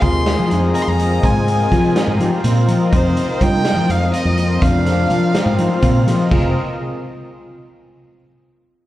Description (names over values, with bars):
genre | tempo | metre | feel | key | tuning
progressive instrumental, band music in an uneven meter | 248 BPM (eighths) | 7/8 | straight | F dorian | A4 = 440 Hz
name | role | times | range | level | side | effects
warm violin | melody | 0.0-5.8 s | C5 to C6 | -22 LUFS | equal | slapback echo
warm trombone | second line | 0.0-6.5 s | C4 to Ab4 | -26 LUFS | equal | slapback echo, digital delay
marimba with soft mallets | arpeggios | 0.0-6.5 s | Bb3 to F4 | -25 LUFS | equal | digital delay
fretless electric bass | bass | 0.0-6.5 s | F1 to F3 | -16 LUFS | equal | none
raw garage drum kit | drums | 0.0-6.4 s | crash cymbal, hi-hat, kick drum, snare drum | -20 LUFS | equal | none
lush unison pad | accompaniment | 0.1-6.5 s | C4 to F5 | -23 LUFS | left 1 dB | chorus, slapback echo
room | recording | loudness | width
light reverb | live gig heard through the venue's PA, club reverb | -13 LUFS | side -15 dB against mid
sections
0.0-6.3 A section; 6.3-8.0 B section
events
none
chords
0.0 Fm7; 2.9 F9sus4; 4.6 F7(no3)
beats
0.02 0.26 0.50 0.74 0.99 | 1.23 1.47 1.72 1.96 2.20 2.44 2.68 | 2.93 3.17 3.41 3.65 3.90 4.14 4.38 | 4.62 4.86 5.11 5.35 5.59 5.83 6.07 | 6.32